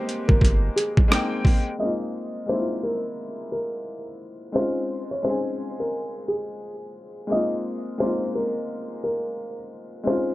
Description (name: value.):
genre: lo-fi hip hop.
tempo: 87 BPM.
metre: 4/4.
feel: swing 60% on 16ths.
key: Ab major.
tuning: A4 = 439 Hz.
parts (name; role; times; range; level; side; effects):
felt-muted upright piano; melody; 0.0-10.3 s; Ab4 to Eb5; -28 LUFS; equal; plate reverb.
bright upright piano; accompaniment; 0.0-10.3 s; Ab3 to G5; -28 LUFS; left 2 dB; cassette tape, plate reverb.
boom bap sampler-style drum kit; drums; 0.1-1.7 s; hi-hat, kick drum, rim click; -18 LUFS; equal; overdrive.
saturated sub bass; bass; 0.3-0.7 s; G1; -24 LUFS; equal; none.
finger snaps; percussion; 1.1-1.3 s; none; -36 LUFS; right 4 dB; none.
room: light reverb.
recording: low-pass filter.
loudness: -22 LUFS.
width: side -17 dB against mid.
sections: 0.0-1.8 A section; 1.8-10.3 B section.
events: none.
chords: 0.0 Abmaj9; 1.8 Ab69; 4.6 Dbmaj9; 7.3 Ab69.